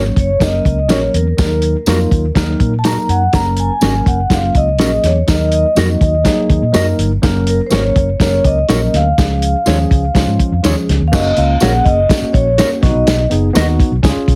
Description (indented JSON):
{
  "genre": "uptempo 1960s-style soul",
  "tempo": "123 BPM",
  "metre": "4/4",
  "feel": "straight",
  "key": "F# major",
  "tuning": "A4 = 440 Hz",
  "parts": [
    { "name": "vibraphone with soft mallets", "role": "melody", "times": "0.0-13.3 s", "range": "A#4 to A#5", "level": "-20 LUFS", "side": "equal", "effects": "none" },
    { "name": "tine electric piano", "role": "accompaniment", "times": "0.0-14.4 s", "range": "E#3 to C#5", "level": "-22 LUFS", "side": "equal", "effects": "none" },
    { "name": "mellow electric guitar", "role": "stabs", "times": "0.0-13.7 s", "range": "C#4 to D#5", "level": "-22 LUFS", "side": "equal", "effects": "none" },
    { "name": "vintage muted fingered electric bass", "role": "bass", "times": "0.0-14.4 s", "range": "F#1 to A#2", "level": "-18 LUFS", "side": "equal", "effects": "none" },
    { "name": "warm soul drum kit", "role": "drums", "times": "0.2-14.4 s", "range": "crash cymbal, hi-hat, kick drum, snare drum", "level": "-18 LUFS", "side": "equal", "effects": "none" },
    { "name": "tambourine", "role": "percussion", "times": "0.4-14.2 s", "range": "none", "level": "-30 LUFS", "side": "equal", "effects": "none" }
  ],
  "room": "light reverb",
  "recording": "heavily compressed radio sound",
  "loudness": "-14 LUFS",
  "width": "mono",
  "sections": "0.0-11.1 A section; 11.1-14.4 B section",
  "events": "none",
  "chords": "0.0 F#; 1.4 D#m; 3.3 F#; 5.3 D#m; 7.2 F#; 9.2 C#; 11.1 F#; 12.8 B",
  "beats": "0.41 0.89 | 1.38 1.87 2.36 2.84 | 3.33 3.82 4.31 4.79 | 5.28 5.77 6.26 6.74 | 7.23 7.72 8.20 8.69 | 9.18 9.66 10.15 10.63 | 11.12 11.61 12.09 12.58 | 13.06 13.55 14.04"
}